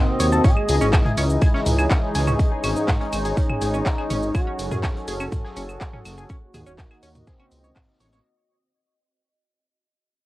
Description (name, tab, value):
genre	melodic techno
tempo	123 BPM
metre	4/4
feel	straight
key	unclear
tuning	A4 = 440 Hz
part	wide unison lead	melody	0.0-8.2 s	B#3 to G#4	-26 LUFS	equal	sidechain pumping, cassette tape, tape echo
part	sweeping resonant pad	sustained chords	0.0-8.2 s	C#3 to A4	-29 LUFS	left 1 dB	chorus, sidechain pumping, cassette tape
part	tight sequenced synth	arpeggios	0.0-8.2 s	C#4 to C#5	-29 LUFS	left 1 dB	chorus, phaser, sidechain pumping, cassette tape, analog delay
part	warbly tape-like pad	texture	0.1-8.2 s	E3 to G#5	-30 LUFS	equal	chorus, built-in reverb, sidechain pumping, cassette tape
part	dark detuned saw bass	bass	0.2-8.2 s	D#1 to G#2	-24 LUFS	equal	tube saturation, sidechain pumping
part	punchy analog drum machine	drums	0.2-8.2 s	claves, handclaps, hi-hat, shaker, toms	-27 LUFS	equal	cassette tape
part	raw garage drum kit	drums	0.2-8.2 s	hi-hat, snare drum	-42 LUFS	equal	none
part	electronic kick drum	drums	0.4-7.9 s	none	-20 LUFS	equal	cassette tape
room	moderate studio ambience, RT60 0.5 s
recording	home recording on cassette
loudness	-18 LUFS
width	side -17 dB against mid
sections	0.0-8.2 A section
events	drop 0.0-8.2; fade-out 0.4-8.2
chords	0.4 C#m; 2.4 G#sus4; 4.3 F#m; 6.3 D#m